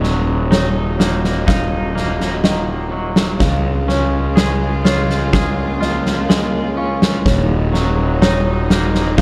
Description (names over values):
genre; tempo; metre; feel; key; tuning
post-rock; 62 BPM; 4/4; straight; Eb minor; A4 = 438 Hz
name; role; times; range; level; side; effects
rich studio string section; sustained chords; 0.0-9.2 s; Db3 to F4; -29 LUFS; equal; none
felt-muted upright piano; arpeggios; 0.0-9.2 s; Db5 to F5; -29 LUFS; equal; analog delay
twangy electric guitar; arpeggios; 0.0-9.2 s; Eb2 to Ab4; -25 LUFS; equal; harmonic tremolo, analog delay
fuzz fingered electric bass; bass; 0.0-9.2 s; Eb1 to Db2; -21 LUFS; equal; overdrive
oversized low-tuned drum kit; drums; 0.0-9.2 s; kick drum, snare drum; -20 LUFS; equal; none
room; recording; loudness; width
light reverb; dark, warm production; -16 LUFS; mono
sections
0.0-9.2 A section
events
none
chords
0.0 Ebm7; 3.4 Db; 7.3 Ebm7